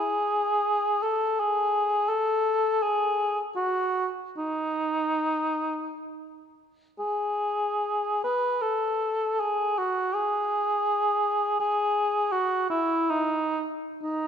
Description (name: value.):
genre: classical, free, expressive piece for unaccompanied cor anglais.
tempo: 58-85 BPM.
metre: 3/4.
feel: rubato.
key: unclear.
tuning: A4 = 440 Hz.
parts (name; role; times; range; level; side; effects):
dark cor anglais; solo; 0.0-14.3 s; D#4 to B4; -24 LUFS; equal; none.
room: moderate concert hall reverb, RT60 2.0 s.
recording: minimal, uncompressed stereo recording.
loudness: -24 LUFS.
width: side -8 dB against mid.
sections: 0.0-14.3 A section.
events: none.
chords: none.